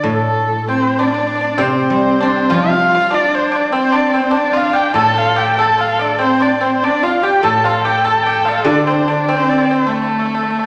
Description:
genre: chinese traditional, Chinese chamber ensemble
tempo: 98 BPM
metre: 2/4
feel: straight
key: A jue mode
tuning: A4 = 443 Hz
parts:
  - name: warm erhu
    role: melody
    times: 0.0-10.7 s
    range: A4 to A5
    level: -19 LUFS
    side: equal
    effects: none
  - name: guzheng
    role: accompaniment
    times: 0.0-10.5 s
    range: A2 to C4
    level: -23 LUFS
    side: equal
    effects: none
  - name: pipa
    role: second line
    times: 0.7-10.7 s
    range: A3 to A4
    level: -21 LUFS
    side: equal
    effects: none
  - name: rich horsehead fiddle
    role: second line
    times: 0.7-10.7 s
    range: A3 to A4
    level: -20 LUFS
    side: equal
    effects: none
room: wet recital hall reverb, RT60 1.6 s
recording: none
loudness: -15 LUFS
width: mono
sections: 0.0-1.3 A section; 1.3-10.7 B section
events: none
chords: none

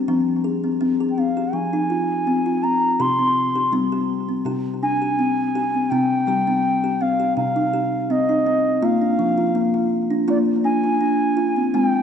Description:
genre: world meditative, meditative tuned percussion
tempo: 82 BPM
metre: 4/4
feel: straight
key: C minor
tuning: A4 = 437 Hz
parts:
  - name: kalimba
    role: arpeggios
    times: 0.0-12.0 s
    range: C3 to Ab4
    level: -20 LUFS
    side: left 1 dB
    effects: ping-pong delay
  - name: mellow bansuri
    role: melody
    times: 1.1-12.0 s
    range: D5 to C6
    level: -22 LUFS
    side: equal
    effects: ping-pong delay
room: wet scoring stage reverb, RT60 1.8 s, small room ambience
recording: dark, warm production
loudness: -18 LUFS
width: side -7 dB against mid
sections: 0.0-5.9 A section; 5.9-12.0 B section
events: none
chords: 0.1 Fm; 3.0 C5; 5.9 Cm; 8.8 Bb

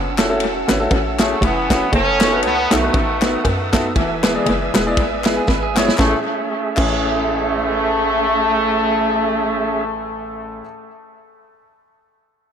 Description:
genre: uptempo gospel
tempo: 118 BPM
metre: 4/4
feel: swing 56% on 8ths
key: A major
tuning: A4 = 443 Hz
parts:
  - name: bright tonewheel organ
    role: sustained chords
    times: 0.0-9.9 s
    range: A3 to E6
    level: -24 LUFS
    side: right 4 dB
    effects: slow rotary speaker
  - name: hollow knocking FM bass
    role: bass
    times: 0.0-10.6 s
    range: E1 to F#2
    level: -25 LUFS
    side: equal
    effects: none
  - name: clear baby grand piano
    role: accompaniment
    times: 0.2-10.6 s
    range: A1 to D5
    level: -22 LUFS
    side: left 1 dB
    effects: dub echo
  - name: warm soul drum kit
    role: drums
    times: 0.2-6.9 s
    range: crash cymbal, kick drum, ride cymbal, snare drum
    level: -20 LUFS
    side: right 1 dB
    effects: dub echo
  - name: group handclap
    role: percussion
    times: 0.2-6.9 s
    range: none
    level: -30 LUFS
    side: left 6 dB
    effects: none
  - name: clear horn section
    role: melody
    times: 1.2-10.6 s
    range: D#3 to C#4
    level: -20 LUFS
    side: left 1 dB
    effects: dub echo
  - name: clean electric guitar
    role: second line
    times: 5.3-6.1 s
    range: E4 to B4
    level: -27 LUFS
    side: right 7 dB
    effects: none
room: moderate spring reverb, RT60 2.1 s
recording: echo-heavy mix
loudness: -15 LUFS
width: side -8 dB against mid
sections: 0.0-6.0 A section; 6.0-10.0 B section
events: drum fill 5.5-6.0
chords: 0.0 F#m7; 1.9 B7/F#; 4.0 E; 6.0 Amaj7

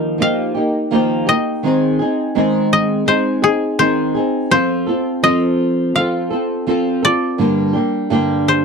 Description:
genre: pop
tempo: 83 BPM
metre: 4/4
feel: swing 55% on 16ths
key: unclear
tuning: A4 = 440 Hz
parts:
  - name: koto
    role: melody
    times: 0.0-8.6 s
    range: Ab4 to F5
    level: -17 LUFS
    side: left 2 dB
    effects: none
  - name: flamenco guitar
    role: accompaniment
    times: 0.0-8.6 s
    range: G2 to A4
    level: -15 LUFS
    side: right 1 dB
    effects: double-tracked left and right
room: light reverb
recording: dry, close 1970s-style studio recording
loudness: -14 LUFS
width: side -5 dB against mid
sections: 0.0-8.6 A section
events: none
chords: 0.0 Ebadd9; 1.6 Ab/Eb; 4.5 F; 7.4 Gm

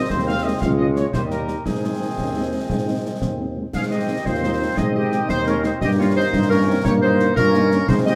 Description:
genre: military-style march for wind band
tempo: 116 BPM (dotted quarters)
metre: 6/8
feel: straight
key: Ab major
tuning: A4 = 441 Hz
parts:
  - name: mellow trumpet section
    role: melody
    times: 0.0-8.1 s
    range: Ab4 to F5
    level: -33 LUFS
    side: equal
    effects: none
  - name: warm woodwind section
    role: second line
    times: 0.0-8.2 s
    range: G4 to F5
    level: -27 LUFS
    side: equal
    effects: none
  - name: warm trombone section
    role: sustained chords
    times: 0.0-8.2 s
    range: Db3 to C4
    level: -32 LUFS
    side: equal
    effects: none
  - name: warm tuba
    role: bass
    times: 0.1-8.2 s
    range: Db2 to Ab2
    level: -24 LUFS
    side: equal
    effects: none
  - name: concert snare drum, concert bass drum and clash cymbals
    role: drums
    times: 0.1-8.2 s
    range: none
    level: -28 LUFS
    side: equal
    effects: none
  - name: dark French horn section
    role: accompaniment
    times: 0.3-8.1 s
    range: G3 to F4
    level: -31 LUFS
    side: equal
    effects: none
  - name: warm euphonium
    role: second line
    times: 2.2-8.2 s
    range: Ab3 to G4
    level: -30 LUFS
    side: equal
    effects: none
  - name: mellow flute section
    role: second line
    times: 3.7-8.2 s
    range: Db4 to Ab4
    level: -31 LUFS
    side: equal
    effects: none
room: moderate plate reverb, RT60 2.0 s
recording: heard from further back in the room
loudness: -20 LUFS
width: mono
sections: 0.0-3.7 A section; 3.7-8.2 A section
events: none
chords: 0.0 Ab; 0.6 Db; 1.1 Eb; 1.7 Ab; 5.8 Eb7/G

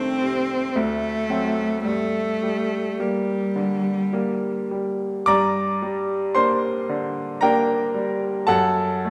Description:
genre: classical, romantic duo for cello and grand piano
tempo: 51-57 BPM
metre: 3/4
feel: rubato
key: G minor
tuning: A4 = 440 Hz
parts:
  - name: clear cello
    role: melody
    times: 0.0-4.7 s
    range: G3 to C4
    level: -26 LUFS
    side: equal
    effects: none
  - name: bright grand piano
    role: accompaniment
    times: 0.0-9.1 s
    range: C2 to D6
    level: -24 LUFS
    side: equal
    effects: none
room: wet recital hall reverb, RT60 1.5 s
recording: none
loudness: -23 LUFS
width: mono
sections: 0.0-5.3 A section; 5.3-9.1 A section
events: none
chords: 0.0 Adim/C; 0.8 D7; 1.9 Gm; 8.5 D/F# (rootless)

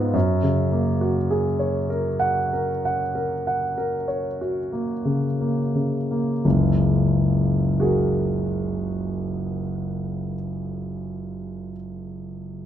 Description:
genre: classical, impressionist solo piano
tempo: 42-54 BPM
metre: 5/4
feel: rubato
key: unclear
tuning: A4 = 439 Hz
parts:
  - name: warm concert grand piano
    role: solo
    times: 0.0-12.7 s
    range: F#1 to D#7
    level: -21 LUFS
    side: equal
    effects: none
room: light reverb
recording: minimal, uncompressed stereo recording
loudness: -21 LUFS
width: side -10 dB against mid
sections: 0.0-6.4 A section; 6.4-12.7 B section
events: slowing down 0.0-6.4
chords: 0.1 F#add9

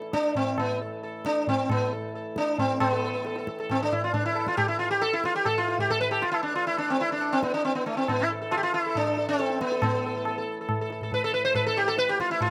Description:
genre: indian classical, Hindustani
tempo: 137 BPM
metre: 4/4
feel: straight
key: A raga darbari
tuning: A4 = 438 Hz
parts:
  - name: sitar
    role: melody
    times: 0.0-12.5 s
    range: A3 to C5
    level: -28 LUFS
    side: equal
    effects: none
  - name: pedal harmonium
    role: drone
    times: 0.0-12.5 s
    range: A2 to E3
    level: -41 LUFS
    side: equal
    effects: none
  - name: tabla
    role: percussion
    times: 0.0-12.5 s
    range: none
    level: -34 LUFS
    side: equal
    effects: none
room: little or no reverb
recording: recorded outdoors, with no room sound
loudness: -27 LUFS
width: mono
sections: 0.0-2.8 A section; 2.8-12.5 B section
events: speeding up 0.0-12.5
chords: none

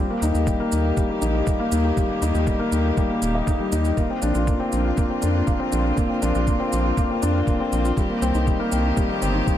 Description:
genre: piano and strings electronica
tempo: 120 BPM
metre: 4/4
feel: straight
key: Bb major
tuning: A4 = 439 Hz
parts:
  - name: clear string quartet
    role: sustained chords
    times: 0.0-9.6 s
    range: D3 to G4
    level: -31 LUFS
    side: equal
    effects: sidechain pumping
  - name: felt-muted upright piano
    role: riff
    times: 0.0-9.6 s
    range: G3 to Eb5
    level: -22 LUFS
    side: left 2 dB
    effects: low-pass filter, ping-pong delay
  - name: round analog bass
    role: bass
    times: 0.2-9.4 s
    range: Eb1 to F2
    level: -22 LUFS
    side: right 1 dB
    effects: sidechain pumping
  - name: shaker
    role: drums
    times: 0.2-9.6 s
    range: none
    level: -36 LUFS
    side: right 5 dB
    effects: overdrive
  - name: electronic kick drum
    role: drums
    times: 0.5-9.6 s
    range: none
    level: -23 LUFS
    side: right 1 dB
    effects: none
room: moderate plate reverb, RT60 2.3 s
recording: dreamy mix soaked in reverb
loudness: -19 LUFS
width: side -11 dB against mid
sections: 0.0-9.6 A section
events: fade-in on string quartet 0.0-9.6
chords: 0.0 Eb; 4.0 Bbadd9; 8.0 Cm7

